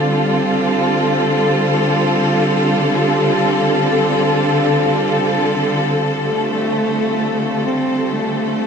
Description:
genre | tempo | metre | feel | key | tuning
ambient | free time | none | none | unclear | A4 = 440 Hz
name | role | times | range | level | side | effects
warm symphonic string section | sustained chords | 0.0-8.7 s | D3 to A4 | -14 LUFS | equal | shimmer reverb
dark cello | melody | 6.3-8.7 s | A3 to C4 | -20 LUFS | right 1 dB | tape echo
room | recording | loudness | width
wet huge ambient reverb, RT60 7.7 s | none | -14 LUFS | side -6 dB against mid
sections
0.0-6.2 A section; 6.2-8.7 B section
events
none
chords
0.0 F69/D

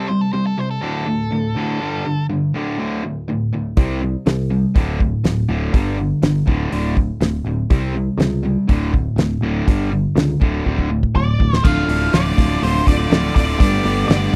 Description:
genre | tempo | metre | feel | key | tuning
classic rock | 122 BPM | 4/4 | straight | D dorian | A4 = 440 Hz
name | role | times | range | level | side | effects
nasal lead guitar with a parked wah | second line | 0.0-2.3 s | A4 to C5 | -29 LUFS | equal | overdrive
cranked stack guitar | riff | 0.0-14.4 s | D2 to G4 | -25 LUFS | equal | overdrive
distorted electric guitar | riff | 0.0-14.4 s | D2 to G4 | -27 LUFS | equal | distortion
picked electric bass | bass | 3.8-14.4 s | D1 to C#2 | -24 LUFS | equal | none
damped 70s drum kit | drums | 3.8-14.2 s | crash cymbal, hi-hat, kick drum, snare drum | -19 LUFS | equal | none
octave-fuzz lead guitar | melody | 11.2-14.4 s | C5 to F5 | -25 LUFS | equal | distortion
picked steel-string acoustic guitar | accompaniment | 11.6-14.4 s | G2 to A4 | -27 LUFS | equal | none
room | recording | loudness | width
little or no reverb | dry, close 1970s-style studio recording | -18 LUFS | mono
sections
0.0-11.6 A section; 11.6-14.4 B section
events
drum fill 10.7-11.6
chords
0.0 C5; 0.8 D5; 1.8 G5; 2.5 D5; 3.8 C5; 4.8 D5; 5.7 G5; 6.5 D5; 7.7 C5; 8.7 D5; 9.7 G5; 10.4 D5; 11.6 Dm; 13.6 Gadd9

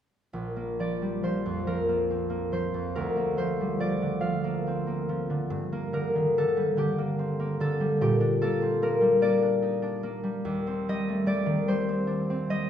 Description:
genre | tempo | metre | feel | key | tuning
classical, solo harp piece | 45-50 BPM (dotted quarters) | 6/8 | rubato | Bb major | A4 = 440 Hz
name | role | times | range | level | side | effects
concert harp | solo | 0.3-12.7 s | Bb1 to F5 | -25 LUFS | equal | none
room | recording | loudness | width
wet recital hall reverb, RT60 1.4 s | heard from further back in the room | -25 LUFS | side -9 dB against mid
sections
0.3-12.7 A section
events
none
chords
0.3 Bb; 3.0 Bb/D; 5.5 Gm; 8.0 Gm/Bb; 10.5 Cm/Eb

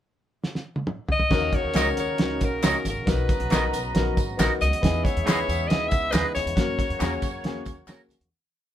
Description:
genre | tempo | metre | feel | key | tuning
uptempo 1960s-style soul | 137 BPM | 4/4 | straight | unclear | A4 = 440 Hz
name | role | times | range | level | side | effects
cloth-damped thuddy drum kit | drums | 0.4-8.3 s | crash cymbal, hi-hat, kick drum, snare drum, toms | -25 LUFS | right 1 dB | none
bright alto saxophone | melody | 1.1-7.8 s | A#4 to E5 | -28 LUFS | left 2 dB | none
warm horn section | second line | 1.3-8.1 s | F#3 to A#5 | -33 LUFS | right 2 dB | none
dark upright piano | accompaniment | 1.3-8.1 s | A#3 to C#5 | -31 LUFS | left 5 dB | none
percussive tonewheel organ | sustained chords | 1.3-8.3 s | C#3 to F#4 | -36 LUFS | right 2 dB | overdrive
upright bass | bass | 1.3-8.3 s | G#1 to F#2 | -29 LUFS | equal | none
tambourine and handclaps | percussion | 1.3-8.2 s | none | -34 LUFS | left 2 dB | none
electric guitar through a small old amp | stabs | 1.8-8.0 s | B3 to D#5 | -27 LUFS | right 2 dB | harmonic tremolo
room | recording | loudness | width
light reverb | band playing live in one room | -22 LUFS | side -11 dB against mid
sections
0.0-1.3 pickup bar; 1.3-8.3 pre-chorus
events
drum fill 0.4-1.3; fade-out 6.6-8.3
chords
0.0 N.C.; 1.3 D#m7; 4.8 Emaj7; 6.6 F#

